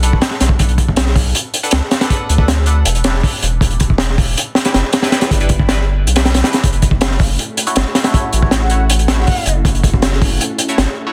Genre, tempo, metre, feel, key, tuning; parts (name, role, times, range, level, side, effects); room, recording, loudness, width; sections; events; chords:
drum and bass, jungle; 159 BPM; 4/4; straight; F# phrygian; A4 = 439 Hz
band-passed chord stab; stabs; 0.0-11.1 s; G3 to F#5; -26 LUFS; equal; phaser, dub echo
saturated sub bass; bass; 0.0-10.9 s; E1 to D2; -18 LUFS; equal; tube saturation
crunchy breakbeat drum kit; drums; 0.0-10.9 s; hi-hat, kick drum, snare drum; -16 LUFS; equal
ethereal airy pad; sustained chords; 7.3-11.1 s; A3 to A4; -28 LUFS; equal; ensemble chorus, built-in reverb, vintage 12-bit sampler grit
mellow concert flute; melody; 8.6-9.6 s; F#5; -27 LUFS; equal; dub echo
light reverb; dense, heavily limited modern master; -14 LUFS; mono
0.0-11.1 A section
0.0 Bm7; 2.9 Em7; 6.6 F#m7